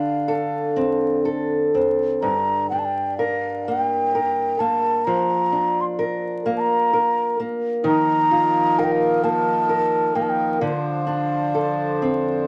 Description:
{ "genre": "celtic folk, Celtic slow air", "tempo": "43 BPM (dotted quarters)", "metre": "6/8", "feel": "rubato", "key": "G minor", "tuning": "A4 = 443 Hz", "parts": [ { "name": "mellow hollow wooden flute", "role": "melody", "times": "0.0-12.5 s", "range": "F5 to C6", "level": "-24 LUFS", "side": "equal", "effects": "none" }, { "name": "fingerpicked old ladder-braced acoustic guitar", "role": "accompaniment", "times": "0.0-12.5 s", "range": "G2 to Bb4", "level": "-24 LUFS", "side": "equal", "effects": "none" }, { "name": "hand-pumped harmonium", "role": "sustained chords", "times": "7.8-12.5 s", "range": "F3 to C5", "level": "-31 LUFS", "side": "equal", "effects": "none" } ], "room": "moderate small room reverb, RT60 0.5 s", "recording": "vinyl crackle", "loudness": "-21 LUFS", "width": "mono", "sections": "0.0-2.2 A section; 2.2-12.5 A section", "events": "none", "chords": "0.0 Dm7; 2.2 Gm; 5.1 Bb/F; 7.8 Ebsus2; 10.6 Dm7" }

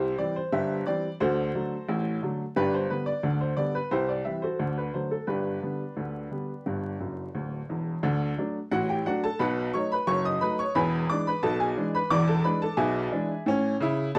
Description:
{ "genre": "ragtime piano", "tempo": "88 BPM", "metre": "2/4", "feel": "straight", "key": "G major, D major from 8.0 s", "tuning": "A4 = 439 Hz", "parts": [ { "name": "clear upright piano", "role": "solo", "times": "0.0-14.2 s", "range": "D1 to D#6", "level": "-28 LUFS", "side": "equal", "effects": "none" } ], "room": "moderate studio reverb, RT60 0.6 s", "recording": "dark, warm production, vinyl crackle", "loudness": "-28 LUFS", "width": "mono", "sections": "0.0-8.0 A section; 8.0-14.2 B section", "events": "upright piano fill 7.0-8.0", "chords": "0.0 C; 1.2 D7; 2.6 G; 3.9 C; 4.6 D; 5.3 G; 8.0 D; 9.4 B7; 10.8 E7; 13.5 A" }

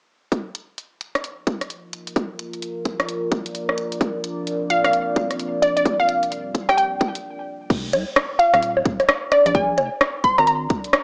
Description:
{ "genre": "UK garage, two-step garage", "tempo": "130 BPM", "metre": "4/4", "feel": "swing 62% on 16ths", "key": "unclear", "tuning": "A4 = 437 Hz", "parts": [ { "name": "electronic kick drum", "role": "drums", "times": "0.3-10.8 s", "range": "none", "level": "-25 LUFS", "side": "equal", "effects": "overdrive, high-pass filter on kick, cassette tape, high-pass filter on room" }, { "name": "house drum kit", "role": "drums", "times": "0.3-11.0 s", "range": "bongos, crash cymbal, hi-hat, rim click", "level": "-24 LUFS", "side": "equal", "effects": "overdrive, cassette tape" }, { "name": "deep dark ambient pad", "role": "texture", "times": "2.1-11.0 s", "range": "G3 to D5", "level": "-31 LUFS", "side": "equal", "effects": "chorus, built-in reverb, sidechain pumping, cassette tape" }, { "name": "glassy wavetable pluck", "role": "melody", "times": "4.7-10.6 s", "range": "D5 to C6", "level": "-20 LUFS", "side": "equal", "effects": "chorus, cassette tape, tape echo" }, { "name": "rubbery square bass", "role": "bass", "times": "7.7-10.7 s", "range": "Eb1 to C2", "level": "-31 LUFS", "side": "equal", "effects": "none" } ], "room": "moderate small room reverb, RT60 0.6 s", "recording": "home recording on cassette, small speaker sound", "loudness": "-21 LUFS", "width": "mono", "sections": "0.3-7.7 A section; 7.7-11.0 B section", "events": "fade-in on ambient pad 0.3-7.7; break 7.2-7.7", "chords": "0.3 F7sus4; 1.9 Bb; 3.8 Csus2; 5.6 Gm7; 7.7 F5; 9.3 Bb7" }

